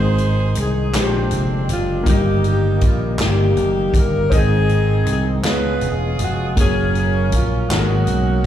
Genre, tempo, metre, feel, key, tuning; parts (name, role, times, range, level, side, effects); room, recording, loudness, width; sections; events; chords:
slow gospel; 53 BPM (dotted quarters); 6/8; straight; A4 = 441 Hz
bright saxophone section; melody; 0.0-8.5 s; Bb3 to C5; -22 LUFS; left 2 dB; slapback echo
clear grand piano; accompaniment; 0.0-8.5 s; G2 to F5; -25 LUFS; left 3 dB; slapback echo
percussive tonewheel organ; sustained chords; 0.0-8.5 s; D3 to Bb4; -27 LUFS; right 3 dB; slow rotary speaker, overdrive
vintage slap bass; bass; 0.0-8.4 s; Fb1 to Db2; -19 LUFS; right 1 dB
swinging big-band drum kit; drums; 0.2-8.2 s; hi-hat, kick drum, snare drum; -22 LUFS; equal
group handclap; percussion; 0.9-8.1 s; -29 LUFS; right 2 dB; slapback echo
light reverb; live gig heard through the venue's PA, club reverb; -15 LUFS; side -10 dB against mid
0.0-8.5 A section
0.0 Ab; 0.9 Bb13; 2.1 Eb/G; 4.3 Ab; 5.4 Db7; 6.6 Gb; 7.7 Ab9sus4